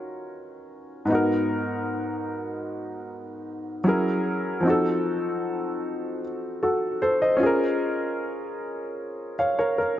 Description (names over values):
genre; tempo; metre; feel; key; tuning
R&B; 76 BPM; 4/4; straight; unclear; A4 = 439 Hz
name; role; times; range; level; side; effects
dark grand piano; solo; 0.0-10.0 s; G#2 to E#5; -24 LUFS; equal; none
room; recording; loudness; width
moderate lush hall reverb, RT60 2.5 s; nothing above 7.7 kHz; -23 LUFS; side -12 dB against mid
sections
0.0-10.0 A section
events
none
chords
0.0 D#m7; 1.1 G#m7; 3.9 F#9; 4.6 F7b9; 7.4 A#m7